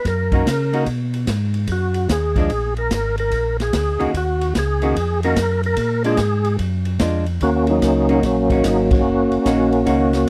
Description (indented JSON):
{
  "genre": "soul jazz organ trio",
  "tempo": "147 BPM",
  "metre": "4/4",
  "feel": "swing 66% on 8ths",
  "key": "Eb minor",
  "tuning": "A4 = 438 Hz",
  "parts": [
    { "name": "percussive tonewheel organ", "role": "melody", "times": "0.0-10.3 s", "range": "Gb3 to Bb4", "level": "-21 LUFS", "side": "equal", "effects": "slow rotary speaker, overdrive, chorus vibrato, slapback echo" },
    { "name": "mellow tonewheel organ", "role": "bass", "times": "0.0-10.3 s", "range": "Gb1 to Db3", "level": "-24 LUFS", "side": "equal", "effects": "slow rotary speaker" },
    { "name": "swinging big-band drum kit", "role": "drums", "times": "0.1-10.2 s", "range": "hi-hat, kick drum, ride cymbal, snare drum", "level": "-26 LUFS", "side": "equal", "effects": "none" },
    { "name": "archtop guitar, miked and amplified", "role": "accompaniment", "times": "0.3-10.1 s", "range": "Eb3 to Gb4", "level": "-24 LUFS", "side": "equal", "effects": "none" }
  ],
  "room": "little or no reverb",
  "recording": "dry, close 1970s-style studio recording",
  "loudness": "-19 LUFS",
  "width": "mono",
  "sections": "0.0-7.4 A section; 7.4-10.3 B section",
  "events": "tonewheel organ solo 0.0-7.4; band accent 8.8",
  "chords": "0.0 Ebm7; 0.9 B; 2.5 Bb7; 4.1 Ebm7; 5.8 Bb7; 7.4 Ebm7"
}